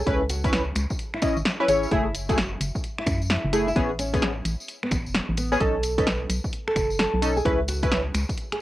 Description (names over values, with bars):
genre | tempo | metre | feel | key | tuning
UK garage, two-step garage | 130 BPM | 4/4 | swing 64% on 16ths | F# dorian | A4 = 440 Hz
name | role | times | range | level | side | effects
nylon-string guitar | melody | 0.0-8.6 s | B3 to B4 | -30 LUFS | right 1 dB | cassette tape, tape echo
organ-like FM bass | bass | 0.0-8.2 s | E1 to F#2 | -28 LUFS | equal | tube saturation, sidechain pumping
punchy chord stab | stabs | 0.1-8.0 s | A3 to D#5 | -24 LUFS | left 1 dB | chorus, cassette tape
electronic kick drum | drums | 0.1-8.4 s | none | -28 LUFS | equal | none
punchy analog drum machine | drums | 0.1-8.6 s | finger snaps, hi-hat, snare drum | -28 LUFS | equal | none
tambourine | percussion | 0.1-8.5 s | none | -38 LUFS | left 1 dB | none
room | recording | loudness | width
moderate booth ambience, RT60 0.2 s | home recording on cassette | -22 LUFS | side -15 dB against mid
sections
0.0-8.6 A section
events
none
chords
0.1 C#m7; 1.9 F#m9; 3.8 Amaj9; 5.6 B9; 7.5 C#m7